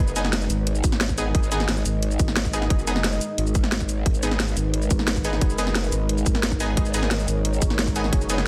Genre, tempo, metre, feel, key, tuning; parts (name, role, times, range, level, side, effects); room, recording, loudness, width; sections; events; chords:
dark technical drum and bass; 177 BPM; 4/4; straight; G# minor; A4 = 440 Hz
dark analog pad; sustained chords; 0.0-8.5 s; G#3 to D#5; -32 LUFS; equal; chorus, sidechain pumping
growl bass; bass; 0.0-8.5 s; F#1 to G#1; -28 LUFS; equal; chorus, sidechain pumping
drum and bass drum kit; drums; 0.1-8.4 s; hi-hat, shaker, snare drum; -29 LUFS; equal; overdrive, studio reverb
orchestra-hit-like synth stab; stabs; 0.2-8.4 s; B3 to G#4; -31 LUFS; equal; built-in reverb, digital delay
electronic kick drum; drums; 0.8-8.2 s; -25 LUFS; equal; overdrive, studio reverb
light reverb; dense, heavily limited modern master; -23 LUFS; mono
0.0-8.5 A section
0.0 G#m